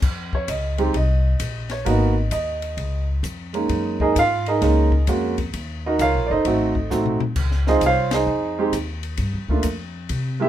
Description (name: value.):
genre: jazz piano trio.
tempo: 131 BPM.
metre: 4/4.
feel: swing 66% on 8ths.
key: F minor.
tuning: A4 = 439 Hz.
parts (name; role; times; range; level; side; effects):
upright bass; bass; 0.0-10.5 s; Gb1 to C3; -23 LUFS; left 1 dB; none.
compact cocktail drum kit; drums; 0.0-10.2 s; crash cymbal, hi-hat, kick drum, ride cymbal, snare drum, toms; -29 LUFS; left 3 dB; none.
warm upright piano; melody; 0.3-10.5 s; Ab3 to F5; -20 LUFS; right 3 dB; none.
room: light reverb.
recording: minimal, uncompressed stereo recording.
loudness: -19 LUFS.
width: side -11 dB against mid.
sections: 0.0-10.5 A section.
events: drum fill 6.9-7.4; band accent 8.0.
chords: 0.0 F7(no3); 1.9 Abm7; 2.8 Dbadd9; 3.7 Gb69; 5.5 Ebm9; 6.4 Ab7b9; 7.4 Dbmaj9; 9.2 G7(no3).